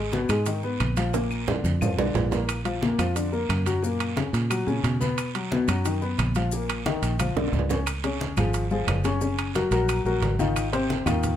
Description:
latin, salsa; 178 BPM; 4/4; straight; A4 = 441 Hz
warm upright piano; accompaniment; 0.0-11.3 s; Bb2 to Db5; -27 LUFS; left 3 dB
fingered electric bass; bass; 0.0-11.4 s; Gb1 to Cb3; -27 LUFS; right 1 dB
congas; percussion; 0.1-11.4 s; -31 LUFS; equal
guiro; percussion; 0.1-11.4 s; -39 LUFS; right 8 dB
maracas; percussion; 0.1-11.4 s; -42 LUFS; left 6 dB
claves; percussion; 0.3-11.2 s; -38 LUFS; left 4 dB
timbales; percussion; 0.3-11.4 s; -32 LUFS; right 8 dB
light reverb; -23 LUFS; side -10 dB against mid
0.0-7.9 A section; 7.9-11.4 B section
drum fill 1.1-2.5, 7.2-7.9
0.0 Abm; 1.1 Bb; 3.8 Gb; 5.2 B; 6.5 Bbsus4; 7.2 Bb; 7.9 Db; 9.2 Gb6; 10.6 Ab6

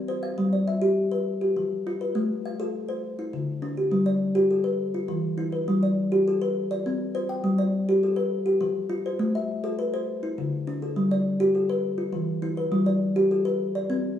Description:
southern african traditional; 136 BPM (dotted quarters); 12/8; straight; G mixolydian; A4 = 435 Hz
kalimba; solo; 0.0-14.2 s; D3 to G5; -23 LUFS; left 1 dB
moderate large studio reverb, RT60 1.1 s; band playing live in one room, small room ambience; -23 LUFS; side -10 dB against mid
0.0-3.9 A section; 3.9-14.2 B section
0.4 G; 1.3 Fsus2; 2.1 Am; 3.0 Dsus24; 3.9 G; 4.8 E5; 5.7 G; 6.6 C5; 7.4 G; 8.3 F; 9.2 Am; 10.1 D5; 11.0 G; 11.8 E5; 12.7 G; 13.6 C5

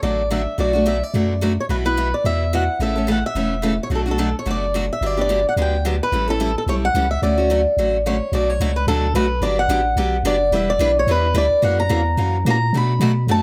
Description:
acoustic string swing (jazz manouche); 217 BPM; 4/4; swing 56% on 8ths; D major, B minor from 8.3 s; A4 = 440 Hz
picked swing-style acoustic guitar; melody; 0.0-13.4 s; A4 to B5; -23 LUFS; equal
picked steel-string acoustic guitar; accompaniment; 0.0-13.4 s; B2 to B4; -25 LUFS; equal
punchy sub bass; bass; 0.0-13.4 s; E1 to B2; -24 LUFS; equal
moderate small room reverb, RT60 0.5 s; -19 LUFS; mono
0.0-8.3 A section; 8.3-13.4 B section
0.0 D; 0.6 Bm7; 1.7 Esus2/B; 2.8 A; 3.9 Bm7; 5.0 Gmaj7; 6.1 A7; 7.2 Dmaj7; 8.3 Bm7; 9.4 Gmaj7; 10.5 Em7; 11.6 F#7; 12.7 Bm7

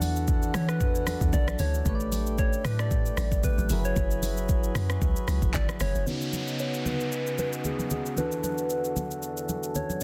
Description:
amapiano; 114 BPM; 4/4; swing 55% on 16ths; C# phrygian; A4 = 438 Hz
soft struck synth lead; melody; 0.0-10.0 s; G#4 to D5; -36 LUFS; equal; chorus, low-pass filter, delay
soft electric-piano-like synth keys; accompaniment; 0.0-10.0 s; C#3 to F#5; -36 LUFS; equal; chorus, tremolo, low-pass filter
pedal harmonium; sustained chords; 0.0-10.0 s; E2 to B4; -39 LUFS; equal; low-pass filter
deep log drum bass; bass; 0.0-6.1 s; F#1 to E3; -31 LUFS; equal
afro-pop drum kit; drums; 0.0-10.0 s; handclaps, hi-hat, kick drum, rim click, shaker; -31 LUFS; equal
congas; percussion; 0.0-10.0 s; -38 LUFS; equal
downlifter; sound effects; 6.1-10.0 s; -41 LUFS; equal
little or no reverb; dense, heavily limited modern master; -27 LUFS; mono
0.0-6.1 A section; 6.1-10.0 B section
drop 0.0-6.1
0.0 E9sus4; 1.9 A9sus4; 3.7 F#9sus4; 6.1 C#9sus4; 8.2 E9sus4

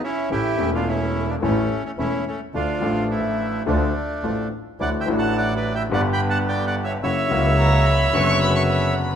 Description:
tango; 108 BPM; 4/4; rubato; D minor, D major from 4.8 s; A4 = 440 Hz
bandoneon; melody; 0.0-8.9 s; A3 to B5; -24 LUFS; right 1 dB
warm grand piano; accompaniment; 0.3-9.2 s; E1 to A4; -24 LUFS; left 4 dB
bandoneon; stabs; 0.3-9.2 s; F3 to G4; -30 LUFS; right 3 dB
warm double bass; bass; 0.3-9.2 s; E1 to D2; -24 LUFS; right 1 dB
warm violin; second line; 7.6-9.1 s; A#5 to C#6; -24 LUFS; left 2 dB
moderate recital hall reverb, RT60 1.7 s; minimal, uncompressed stereo recording; -19 LUFS; side -8 dB against mid
0.0-4.8 A section; 4.8-9.2 B section
0.3 A; 2.5 Dm; 4.8 Dadd9; 5.9 G; 7.0 F#7; 8.1 Bm/F#

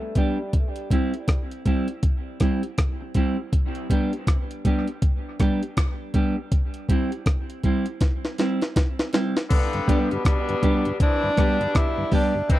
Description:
dub reggae; 80 BPM; 4/4; swing 61% on 16ths; G major; A4 = 439 Hz
warm tenor saxophone; melody; 0.0-0.5, 9.9-12.6 s; G3 to E4; -28 LUFS; equal; low-pass filter, dub echo
clean electric guitar; accompaniment; 0.0-12.3 s; G3 to G4; -26 LUFS; right 1 dB; spring reverb, dub echo
breakbeat sampler-style drum kit; drums; 0.2-12.6 s; crash cymbal, hi-hat, kick drum, rim click, snare drum; -22 LUFS; equal
clear horn section; second line; 9.5-12.6 s; G2 to E4; -28 LUFS; left 3 dB; dub echo
mellow tonewheel organ; accompaniment; 9.7-12.4 s; G2 to D4; -30 LUFS; left 1 dB; slow rotary speaker, dub echo
little or no reverb; dry, close 1970s-style studio recording; -21 LUFS; side -15 dB against mid
0.0-9.5 A section; 9.5-12.6 B section
drum fill 8.0-9.5
0.0 G; 0.5 C; 3.5 G; 6.5 C; 9.5 G

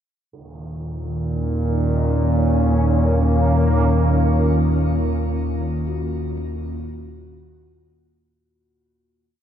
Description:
dark ambient drone; 60 BPM; 4/4; straight; Eb minor; A4 = 440 Hz
sweeping resonant pad; sustained chords; 0.3-8.4 s; Eb3 to Db4; -22 LUFS; equal; chorus, shimmer reverb
analog drone; drone; 0.7-8.5 s; Eb2 to Bb2; -20 LUFS; equal; chorus
tam-tam; percussion; 0.3-2.6 s; -40 LUFS; right 3 dB
bronze singing bowl; arpeggios; 1.3-9.4 s; Eb3 to Gb4; -35 LUFS; left 2 dB; tape echo
wet huge ambient reverb, RT60 7.5 s; dreamy mix soaked in reverb; -17 LUFS; side -9 dB against mid
0.3-8.4 A section
fade-in on singing bowl 0.3-8.4; fade-out 4.4-8.4
0.3 Eb5

